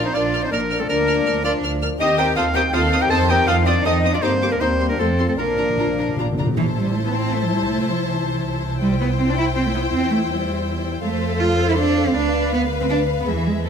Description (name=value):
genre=quick classical-period movement for symphony orchestra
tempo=161 BPM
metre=3/4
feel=straight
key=Bb major, A minor from 6.6 s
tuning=A4 = 440 Hz
part: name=warm chamber violin section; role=melody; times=0.0-13.7 s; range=C5 to F6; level=-29 LUFS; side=left 3 dB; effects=none
part: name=mellow clarinet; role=second line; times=0.0-6.2 s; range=A4 to A5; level=-25 LUFS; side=left 2 dB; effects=none
part: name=silver concert flute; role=second line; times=0.0-6.2 s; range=A4 to A5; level=-26 LUFS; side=left 2 dB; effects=none
part: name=warm symphonic violin section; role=second line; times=0.0-13.7 s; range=C4 to C5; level=-27 LUFS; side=left 4 dB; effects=none
part: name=warm chamber viola section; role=accompaniment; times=0.0-13.7 s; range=Bb3 to C5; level=-28 LUFS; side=left 2 dB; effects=none
part: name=clear French horn section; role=sustained chords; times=0.0-6.4 s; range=D3 to D4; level=-26 LUFS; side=left 4 dB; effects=none
part: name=dark chamber double bass section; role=bass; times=0.0-13.7 s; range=A1 to G2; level=-24 LUFS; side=right 2 dB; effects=none
part: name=warm chamber cello section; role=bass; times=0.0-13.7 s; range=E3 to A4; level=-23 LUFS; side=right 3 dB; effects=none
part: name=timpani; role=percussion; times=0.0-0.3, 5.4-6.5 s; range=Bb2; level=-26 LUFS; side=left 1 dB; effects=none
part: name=bright oboe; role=second line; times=0.1-6.2 s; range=A4 to A5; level=-25 LUFS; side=right 1 dB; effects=none
room=moderate scoring stage reverb, RT60 1.6 s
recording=none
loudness=-17 LUFS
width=side -7 dB against mid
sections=0.0-6.6 A section; 6.6-13.7 B section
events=timpani fill 5.4-6.6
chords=0.0 Bb; 0.9 Bb/D; 2.0 Cm/Eb; 3.1 F7; 4.2 Gm; 4.6 Cm7/Eb; 5.0 F; 5.4 Bb; 6.6 Am; 7.7 Am/C; 8.8 C; 9.9 C/E; 11.0 F; 12.2 Bdim/D; 13.3 E